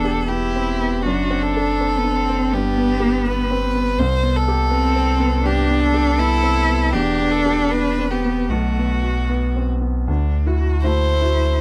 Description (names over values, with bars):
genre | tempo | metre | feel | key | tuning
neoclassical piano and strings | 75-84 BPM | 4/4 | rubato | unclear | A4 = 440 Hz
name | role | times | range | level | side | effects
rich violin | melody | 0.0-11.6 s | F#4 to C5 | -25 LUFS | equal | none
rich cello | second line | 0.0-11.6 s | A3 to F#4 | -24 LUFS | equal | none
felt-muted upright piano | accompaniment | 0.0-11.6 s | B1 to B4 | -26 LUFS | equal | none
pure sine sub bass | bass | 0.0-11.6 s | E1 to D2 | -24 LUFS | equal | none
room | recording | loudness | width
little or no reverb | close, detailed microphones | -19 LUFS | mono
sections
0.0-10.1 A section; 10.1-11.6 B section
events
none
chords
0.0 Em7; 1.0 D7/F#; 2.5 G; 4.0 Cmaj7; 6.9 Em7; 8.5 B5; 10.1 Dadd9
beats
0.29 | 1.05 1.79 2.53 3.25 | 3.98 4.70 5.44 6.18 | 6.94 7.72 8.50 9.30 | 10.08 10.85